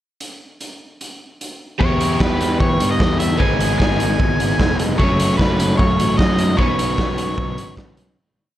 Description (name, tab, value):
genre	indie rock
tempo	150 BPM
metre	4/4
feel	straight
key	unclear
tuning	A4 = 439 Hz
part	raw garage drum kit	drums	0.2-8.1 s	hi-hat, kick drum, snare drum	-20 LUFS	equal	none
part	octave-fuzz lead guitar	melody	1.8-7.7 s	B4 to G#5	-23 LUFS	equal	distortion
part	overdriven electric guitar	riff	1.8-8.2 s	F#3 to G#4	-21 LUFS	equal	none
part	fuzz picked electric bass	bass	1.8-8.2 s	F1 to E3	-22 LUFS	equal	overdrive
room	studio reverb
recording	dark, warm production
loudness	-15 LUFS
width	side -13 dB against mid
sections	0.2-1.8 pickup bar; 1.8-8.2 pre-chorus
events	fade-out 6.6-8.2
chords	0.2 N.C.; 1.8 Em; 3.4 G#m; 5.0 F#m; 6.6 Bsus2